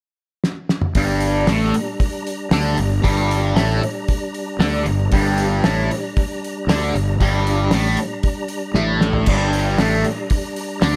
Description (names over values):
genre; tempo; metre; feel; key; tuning
psychedelic rock; 115 BPM; 4/4; straight; G minor; A4 = 440 Hz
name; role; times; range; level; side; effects
cloth-damped thuddy drum kit; drums; 0.4-10.9 s; crash cymbal, hi-hat, kick drum, snare drum, toms; -24 LUFS; equal; none
bright tonewheel organ; sustained chords; 1.0-11.0 s; G3 to Bb5; -29 LUFS; equal; slow rotary speaker, chorus vibrato
fuzz guitar; riff; 1.0-11.0 s; G2 to D4; -22 LUFS; equal; distortion, phaser
fuzz fingered electric bass; bass; 1.0-11.0 s; G1 to D2; -24 LUFS; equal; overdrive
room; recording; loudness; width
small room ambience; none; -19 LUFS; mono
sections
1.0-11.0 A section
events
drum fill 0.4-1.0, 8.8-9.3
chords
0.0 N.C.; 1.0 Gm